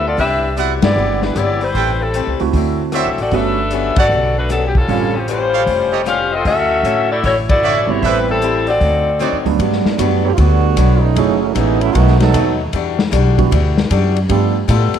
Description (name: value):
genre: jazz, big band swing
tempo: 153 BPM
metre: 4/4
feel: swing 65% on 8ths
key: D major, G major from 9.6 s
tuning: A4 = 443 Hz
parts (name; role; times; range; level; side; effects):
- warm saxophone section; melody; 0.0-9.4 s; E#3 to E#5; -16 LUFS; left 2 dB; none
- picked swing-style acoustic guitar; accompaniment; 0.0-15.0 s; F#2 to B4; -22 LUFS; left 10 dB; none
- upright bass; bass; 0.0-15.0 s; E#1 to A2; -17 LUFS; equal; none
- swinging big-band drum kit; drums; 0.2-15.0 s; hi-hat, kick drum, ride cymbal, rim click, snare drum; -22 LUFS; left 2 dB; none
- brilliant trumpet section; stabs; 0.6-9.4 s; Eb4 to G5; -22 LUFS; right 8 dB; none
- warm concert grand piano; accompaniment; 0.8-5.1, 7.9-14.5 s; G2 to F#5; -20 LUFS; right 13 dB; none
- bright trombone section; second line; 10.2-12.6 s; D3 to A4; -17 LUFS; right 10 dB; none
room: moderate plate reverb, RT60 1.4 s, small room ambience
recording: 1960s-style stereo with parts hard left and right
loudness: -13 LUFS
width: side -9 dB against mid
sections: 0.0-9.6 A section; 9.6-15.0 B section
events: band accent 0.8, 3.9, 7.4; trombone section solo 9.6-15.0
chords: 0.2 Cmaj9#11; 1.7 Am9; 2.5 D9; 3.3 Gmaj9#11; 4.9 A7alt; 6.5 Dmaj9; 8.0 Am7; 8.8 D7b9; 9.6 Gmaj7; 11.2 F#m7; 11.9 B7; 12.7 Em9; 14.3 G9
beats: | 0.18 0.57 0.96 1.36 | 1.75 2.14 2.53 2.92 | 3.32 3.71 4.10 4.49 | 4.89 5.28 5.67 6.06 | 6.46 6.85 7.24 7.63 | 8.02 8.42 8.81 9.20 | 9.59 9.98 10.38 10.77 | 11.16 11.55 11.94 12.34 | 12.73 13.12 13.51 13.90 | 14.29 14.68